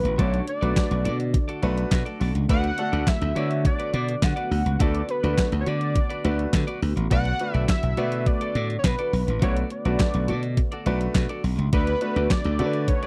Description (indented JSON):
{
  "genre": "early-eighties boogie funk",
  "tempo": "104 BPM",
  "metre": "4/4",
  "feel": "straight",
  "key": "unclear",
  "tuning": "A4 = 440 Hz",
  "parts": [
    { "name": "fat analog lead", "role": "melody", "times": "0.0-13.1 s", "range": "B4 to F#5", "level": "-31 LUFS", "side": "equal", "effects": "chorus" },
    { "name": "chorused pulse-width pad", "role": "sustained chords", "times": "0.0-13.1 s", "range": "D3 to F#4", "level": "-38 LUFS", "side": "equal", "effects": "none" },
    { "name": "clean electric guitar", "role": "riff", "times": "0.0-13.1 s", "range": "F#4 to D5", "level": "-37 LUFS", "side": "equal", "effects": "analog chorus" },
    { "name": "slap bass", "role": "bass", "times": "0.0-12.9 s", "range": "A1 to D3", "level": "-27 LUFS", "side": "equal", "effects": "none" },
    { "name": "crisp 8-bit digital drum machine", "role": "drums", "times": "0.1-13.1 s", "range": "handclaps, hi-hat, kick drum, snare drum", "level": "-26 LUFS", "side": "equal", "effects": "none" },
    { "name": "clear grand piano", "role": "accompaniment", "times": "0.2-13.1 s", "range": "A3 to D5", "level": "-32 LUFS", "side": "equal", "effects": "none" }
  ],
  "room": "digital ambience",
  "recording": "dry, close 1970s-style studio recording",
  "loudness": "-24 LUFS",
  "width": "mono",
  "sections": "0.0-13.1 A section",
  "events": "none",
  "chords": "0.0 Bm7",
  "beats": "| 0.19 0.77 1.34 1.92 | 2.50 3.07 3.65 4.23 | 4.80 5.38 5.96 6.54 | 7.11 7.69 8.27 8.84 | 9.42 10.00 10.57 11.15 | 11.73 12.30 12.88"
}